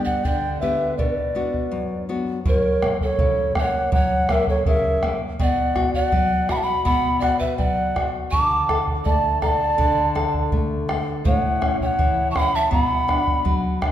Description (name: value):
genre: andean folk, Andean ensemble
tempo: 82 BPM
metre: 2/4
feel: straight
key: B minor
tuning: A4 = 441 Hz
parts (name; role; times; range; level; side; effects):
- mellow hollow pan flute; second line; 0.0-13.8 s; A4 to A5; -26 LUFS; right 3 dB; none
- nylon-string guitar; accompaniment; 0.0-13.9 s; F#2 to A4; -26 LUFS; left 3 dB; none
- mellow large quena; melody; 0.1-13.8 s; C#5 to D6; -22 LUFS; equal; none
- bombo; percussion; 0.1-13.9 s; none; -23 LUFS; equal; none
room: wet recital hall reverb, RT60 1.5 s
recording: minimal, uncompressed stereo recording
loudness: -18 LUFS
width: side -11 dB against mid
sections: 0.0-2.5 A section; 2.5-13.9 B section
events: break 1.7-2.5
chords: 0.0 G; 1.0 Bm; 2.5 F#; 5.4 B5; 8.3 D5; 11.3 A; 12.7 Bm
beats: 0.25 | 0.98 1.72 | 2.45 3.19 | 3.92 4.65 | 5.39 6.12 | 6.85 7.59 | 8.32 9.05 | 9.79 10.52 | 11.25 11.99 | 12.72 13.45